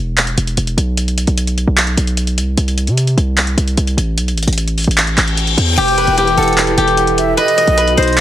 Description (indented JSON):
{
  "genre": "hip hop, trap",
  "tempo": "150 BPM",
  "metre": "4/4",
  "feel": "half-time",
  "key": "E harmonic minor",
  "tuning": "A4 = 440 Hz",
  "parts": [
    { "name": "hard-hitting 808-style bass", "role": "bass", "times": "0.0-8.2 s", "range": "E1 to C3", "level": "-15 LUFS", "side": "equal", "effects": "none" },
    { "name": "booming analog drum machine", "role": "drums", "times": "0.2-8.2 s", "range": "crash cymbal, handclaps, hi-hat", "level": "-17 LUFS", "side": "equal", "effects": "none" },
    { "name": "reverse cymbal and downlifter", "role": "sound effects", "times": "5.1-8.2 s", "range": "none", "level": "-23 LUFS", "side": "left 3 dB", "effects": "none" },
    { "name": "steel-string zither", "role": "melody", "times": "5.8-8.2 s", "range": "G4 to D#5", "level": "-13 LUFS", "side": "left 2 dB", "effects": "digital delay" },
    { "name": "breathy mellow silver concert flute", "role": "second line", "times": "5.8-8.2 s", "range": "D#5 to G5", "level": "-18 LUFS", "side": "right 2 dB", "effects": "digital delay" },
    { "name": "airy breathy pad", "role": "sustained chords", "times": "5.9-8.2 s", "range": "B2 to B4", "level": "-20 LUFS", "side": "right 2 dB", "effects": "chorus" }
  ],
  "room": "light reverb",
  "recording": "heavily compressed radio sound",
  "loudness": "-12 LUFS",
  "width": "side -12 dB against mid",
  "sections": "0.0-5.8 A section; 5.8-8.2 B section",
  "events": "break 0.0-5.8; reverse cymbal 5.1-5.8",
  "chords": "0.0 E5; 1.0 N.C.; 2.6 Am; 4.2 A5; 5.8 Em; 7.4 B"
}